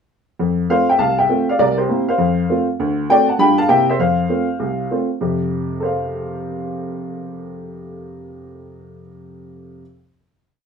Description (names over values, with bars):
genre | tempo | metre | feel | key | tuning
jazz, stride piano | 200 BPM | 4/4 | swing 64% on 8ths | F major | A4 = 440 Hz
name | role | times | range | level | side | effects
warm upright piano | solo | 0.4-9.8 s | C2 to B5 | -16 LUFS | equal | none
room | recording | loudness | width
wet studio ambience, RT60 0.5 s | band playing live in one room | -16 LUFS | side -6 dB against mid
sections
0.4-5.2 A section; 5.2-7.6 final chord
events
none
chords
0.4 F; 1.6 C7; 2.2 F; 2.8 D7; 3.4 G7; 3.7 C7; 4.0 F